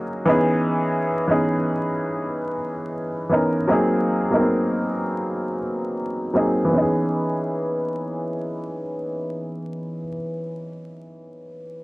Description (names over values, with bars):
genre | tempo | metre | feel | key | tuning
hip hop | 79 BPM | 4/4 | swing 65% on 16ths | C# dorian | A4 = 440 Hz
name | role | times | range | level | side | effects
bright upright piano | accompaniment | 0.0-11.8 s | E3 to A#4 | -21 LUFS | equal | cassette tape, low-pass filter
room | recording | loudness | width
light reverb | dry, gritty hardware recording, vinyl crackle | -21 LUFS | side -22 dB against mid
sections
0.0-6.7 A section; 6.7-9.8 B section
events
filter sweep on upright piano 0.0-6.7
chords
0.3 C#m7/E; 3.7 G#9; 6.7 C#m7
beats
| 0.65 1.41 2.17 2.93 | 3.69 4.45 5.21 5.97 | 6.73 7.49 8.25 9.01